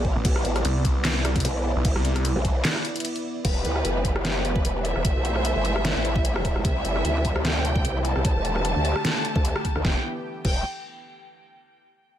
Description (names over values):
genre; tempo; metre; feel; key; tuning
heavy wobble dubstep; 150 BPM; 4/4; swing 55% on 16ths, half-time; E minor; A4 = 438 Hz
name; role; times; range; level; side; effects
supersaw pad; sustained chords; 0.0-10.0 s; C3 to D5; -32 LUFS; equal; sidechain pumping, low-pass filter
growl bass; bass; 0.0-10.6 s; E1 to D2; -25 LUFS; equal; distortion, chorus, overdrive
electronic kick drum; drums; 0.0-10.5 s; none; -24 LUFS; equal; none
snarling distorted saw bass; bass; 0.2-2.3 s; A1 to C2; -24 LUFS; equal; distortion, overdrive
dubstep drum kit; drums; 0.2-10.5 s; crash cymbal, handclaps, hi-hat, rim click, snare drum; -28 LUFS; left 1 dB; none
rich studio violin section; melody; 3.4-10.6 s; B4 to A5; -31 LUFS; right 1 dB; vintage 12-bit sampler grit, tape echo
room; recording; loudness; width
digital ambience; none; -22 LUFS; side -11 dB against mid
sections
0.0-3.4 A section; 3.4-9.8 B section; 9.8-11.4 C section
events
drop 0.0-3.4; break 2.6-3.4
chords
0.0 Bm; 3.4 Em; 5.0 Am; 6.6 C; 8.2 Dsus4; 9.8 Em